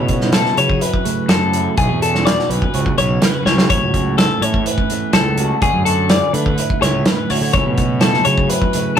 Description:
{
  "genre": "math rock and midwest emo",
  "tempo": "125 BPM",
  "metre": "4/4",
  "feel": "straight",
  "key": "unclear",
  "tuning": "A4 = 438 Hz",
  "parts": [
    { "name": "twelve-string electric guitar", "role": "accompaniment", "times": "0.0-9.0 s", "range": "E2 to A4", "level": "-21 LUFS", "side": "right 4 dB", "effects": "none" },
    { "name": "twelve-string electric guitar", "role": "arpeggios", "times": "0.0-9.0 s", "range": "G#4 to D5", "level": "-19 LUFS", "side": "left 4 dB", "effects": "none" },
    { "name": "fuzz fingered electric bass", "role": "bass", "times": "0.0-9.0 s", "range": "A1 to D3", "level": "-20 LUFS", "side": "equal", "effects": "overdrive" },
    { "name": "loose indie drum kit", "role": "drums", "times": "0.1-9.0 s", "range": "hi-hat, kick drum, snare drum", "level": "-18 LUFS", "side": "right 1 dB", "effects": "none" }
  ],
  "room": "moderate studio reverb, RT60 0.5 s",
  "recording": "rough rehearsal-room recording",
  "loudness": "-13 LUFS",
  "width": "side -8 dB against mid",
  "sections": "0.0-9.0 A section",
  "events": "drum fill 3.5",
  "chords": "0.0 F#m7; 1.8 Bm9; 2.7 C#7sus4; 3.7 A6; 5.6 Dmaj7; 7.5 F#m7/C#"
}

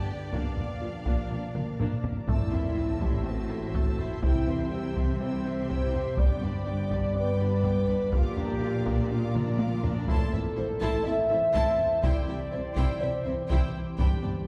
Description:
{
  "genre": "cinematic, hybrid orchestral and electronic film score",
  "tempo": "123 BPM",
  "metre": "4/4",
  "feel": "straight",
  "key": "unclear",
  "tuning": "A4 = 440 Hz",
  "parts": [
    { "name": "rich symphonic violin section", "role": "melody", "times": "0.0-14.3 s", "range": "E5 to E6", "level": "-49 LUFS", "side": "equal", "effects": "none" },
    { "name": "clear symphonic violin section", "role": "second line", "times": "0.0-14.3 s", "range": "D4 to A5", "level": "-44 LUFS", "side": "equal", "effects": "none" },
    { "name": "warm symphonic viola section", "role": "accompaniment", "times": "0.0-14.3 s", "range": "F3 to F4", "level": "-42 LUFS", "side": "equal", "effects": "none" },
    { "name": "dark French horn section", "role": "sustained chords", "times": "0.0-14.5 s", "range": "F3 to E5", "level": "-33 LUFS", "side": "equal", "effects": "none" },
    { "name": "organ-like drone", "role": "sustained chords", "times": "0.0-14.5 s", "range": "D3 to D5", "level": "-41 LUFS", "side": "equal", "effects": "ensemble chorus, built-in reverb" },
    { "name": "resonant blip pluck", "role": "arpeggios", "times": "0.3-14.4 s", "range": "C3 to Bb4", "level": "-42 LUFS", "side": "equal", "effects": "none" },
    { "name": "rich chamber cello section", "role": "bass", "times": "0.3-14.3 s", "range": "G2 to C3", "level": "-37 LUFS", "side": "equal", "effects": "none" },
    { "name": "warm symphonic double bass section", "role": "bass", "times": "0.3-14.3 s", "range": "G1 to C2", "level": "-37 LUFS", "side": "equal", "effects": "none" },
    { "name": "taiko ensemble", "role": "drums", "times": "0.3-14.4 s", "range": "none", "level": "-32 LUFS", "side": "equal", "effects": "none" },
    { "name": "sub drop", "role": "sound effects", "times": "2.3-4.2 s", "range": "none", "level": "-36 LUFS", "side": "equal", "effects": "none" }
  ],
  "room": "wet scoring stage reverb, RT60 1.8 s",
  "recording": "heard from further back in the room",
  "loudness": "-28 LUFS",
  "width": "mono",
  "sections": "0.0-2.3 A section; 2.3-14.5 A section",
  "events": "drum fill 1.6-2.3, 9.4-10.1; impact 2.3-4.2",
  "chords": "0.3 Bb; 2.3 Am; 4.2 C; 6.2 G; 8.1 Bb; 10.1 Am; 12.0 C"
}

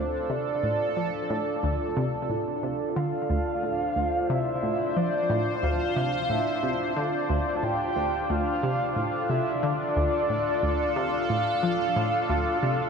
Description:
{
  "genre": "ambient, sequencer-driven space music",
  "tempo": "90 BPM",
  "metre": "4/4",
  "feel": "straight",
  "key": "D minor",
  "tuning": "A4 = 440 Hz",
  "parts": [
    { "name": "soft octave-layered synth lead", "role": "melody", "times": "0.0-12.9 s", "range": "C5 to A5", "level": "-29 LUFS", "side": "equal", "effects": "chorus, ping-pong delay" },
    { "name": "sweeping resonant pad", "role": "sustained chords", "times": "0.0-12.9 s", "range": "D4 to C5", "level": "-28 LUFS", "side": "right 1 dB", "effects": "chorus" },
    { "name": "analog pluck", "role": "riff", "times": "0.0-12.8 s", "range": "D2 to F3", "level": "-29 LUFS", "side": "equal", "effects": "chorus, ping-pong delay" }
  ],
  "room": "wet cathedral reverb, RT60 4.8 s",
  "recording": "in a vast, echoing space",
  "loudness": "-24 LUFS",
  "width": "side -6 dB against mid",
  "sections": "0.0-12.9 A section",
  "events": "filter sweep on synth arpeggio sound 0.0-12.9",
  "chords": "0.0 Dm"
}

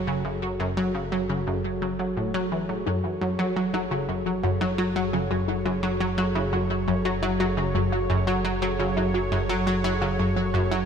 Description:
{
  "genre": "ambient, sequencer-driven space music",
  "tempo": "86 BPM",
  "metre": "4/4",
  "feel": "straight",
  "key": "F# minor",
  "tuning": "A4 = 440 Hz",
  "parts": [
    { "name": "sweeping resonant pad", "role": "sustained chords", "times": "0.0-10.9 s", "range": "F#3 to C#5", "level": "-29 LUFS", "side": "right 2 dB", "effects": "chorus" },
    { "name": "analog drone", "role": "bass", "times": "0.0-10.9 s", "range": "F#1", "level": "-33 LUFS", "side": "equal", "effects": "chorus" },
    { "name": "analog pluck", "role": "riff", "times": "0.1-10.8 s", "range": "F#2 to F#3", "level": "-25 LUFS", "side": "equal", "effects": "chorus, tape echo" },
    { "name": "wide unison pluck", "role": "arpeggios", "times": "2.9-10.8 s", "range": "F#3 to F#4", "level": "-31 LUFS", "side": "moving between left 7 dB and right 3 dB", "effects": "auto-pan, tape echo" }
  ],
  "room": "moderate plate reverb, RT60 3.0 s",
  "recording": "echo-heavy mix",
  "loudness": "-23 LUFS",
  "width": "side -7 dB against mid",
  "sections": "0.0-10.9 A section",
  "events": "fade-in on analog synth pad 0.0-10.9",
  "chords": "0.0 F#madd9"
}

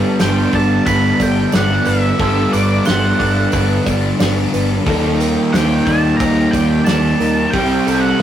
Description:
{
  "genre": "rock, shoegaze and dream pop",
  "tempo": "90 BPM",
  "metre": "4/4",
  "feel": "straight",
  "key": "G major",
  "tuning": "A4 = 439 Hz",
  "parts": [
    { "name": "string machine, violins", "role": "sustained chords", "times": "0.0-8.2 s", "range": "C4 to E6", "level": "-28 LUFS", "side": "right 2 dB", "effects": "ensemble chorus" },
    { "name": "twelve-string electric guitar", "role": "arpeggios", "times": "0.0-8.2 s", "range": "G4 to C6", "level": "-24 LUFS", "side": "right 4 dB", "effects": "none" },
    { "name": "crunchy overdriven guitar", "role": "riff", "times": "0.0-8.2 s", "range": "G2 to E4", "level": "-20 LUFS", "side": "right 3 dB", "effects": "none" },
    { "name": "overdriven electric guitar", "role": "riff", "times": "0.0-8.2 s", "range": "G2 to Eb4", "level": "-22 LUFS", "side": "right 1 dB", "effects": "none" },
    { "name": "overdriven semi-hollow guitar", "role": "riff", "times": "0.0-8.2 s", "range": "G2 to G4", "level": "-20 LUFS", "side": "left 4 dB", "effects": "none" },
    { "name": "octave-fuzz lead guitar", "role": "melody", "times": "0.2-8.2 s", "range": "D5 to B5", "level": "-20 LUFS", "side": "right 1 dB", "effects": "distortion, digital delay" },
    { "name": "fuzz fingered electric bass", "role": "bass", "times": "0.2-8.1 s", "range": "G1 to Eb2", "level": "-20 LUFS", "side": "equal", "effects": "overdrive" },
    { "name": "loose indie drum kit", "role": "drums", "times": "0.2-8.2 s", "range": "hi-hat, kick drum, snare drum", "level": "-21 LUFS", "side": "equal", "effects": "none" },
    { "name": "tambourine", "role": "percussion", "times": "0.2-8.0 s", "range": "none", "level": "-35 LUFS", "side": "right 7 dB", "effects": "none" }
  ],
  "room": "moderate studio ambience, RT60 0.5 s",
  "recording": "rough rehearsal-room recording, warm saturation",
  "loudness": "-12 LUFS",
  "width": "side -10 dB against mid",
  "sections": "0.0-8.2 A section",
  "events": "none",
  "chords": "0.0 Gadd9; 4.9 Ebmaj7; 7.5 Cmaj7"
}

